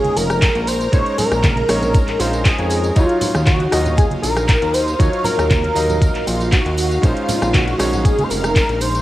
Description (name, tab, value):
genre	nu-disco, nu disco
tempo	118 BPM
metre	4/4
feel	straight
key	Eb dorian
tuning	A4 = 439 Hz
part	wide unison lead	melody	0.0-9.0 s	F4 to Db5	-20 LUFS	equal	analog chorus, cassette tape, analog delay
part	clear electric grand piano	accompaniment	0.0-9.0 s	Gb3 to F5	-24 LUFS	right 1 dB	cassette tape
part	string machine, full ensemble	sustained chords	0.0-9.0 s	Eb4 to Bb5	-29 LUFS	equal	ensemble chorus, sidechain pumping, cassette tape
part	house drum kit	drums	0.0-9.0 s	handclaps, hi-hat, rim click, tambourine	-23 LUFS	equal	studio reverb
part	congas and tambourine	percussion	0.0-9.0 s	none	-28 LUFS	right 1 dB	none
part	fat analog bass	bass	0.2-9.0 s	F1 to F2	-21 LUFS	equal	none
part	electronic kick drum	drums	0.4-8.7 s	none	-16 LUFS	equal	overdrive, studio reverb
room	light reverb, digital ambience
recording	home recording on cassette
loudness	-14 LUFS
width	side -15 dB against mid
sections	0.0-9.0 A section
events	none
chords	0.0 Bbm11; 3.0 Ebm9; 7.0 Bbm11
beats	0.42 | 0.93 1.44 1.95 2.46 | 2.96 3.47 3.98 4.49 | 5.00 5.51 6.01 6.52 | 7.03 7.54 8.05 8.56